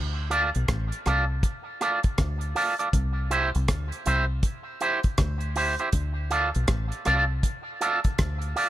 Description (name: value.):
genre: roots reggae.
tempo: 80 BPM.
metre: 4/4.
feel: swing 63% on 16ths.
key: unclear.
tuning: A4 = 440 Hz.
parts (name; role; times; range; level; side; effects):
deep dub fingered electric bass; bass; 0.0-8.5 s; A1 to D2; -27 LUFS; equal; none.
electric guitar with an envelope filter; accompaniment; 0.3-8.7 s; E4 to D5; -26 LUFS; right 2 dB; tape echo.
deep reggae drum kit; drums; 0.3-8.7 s; hi-hat, kick drum, rim click; -27 LUFS; equal; none.
room: little or no reverb.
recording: none.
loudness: -23 LUFS.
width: side -13 dB against mid.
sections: 0.0-8.7 A section.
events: none.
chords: 0.0 Dm; 2.9 C; 5.9 Dm.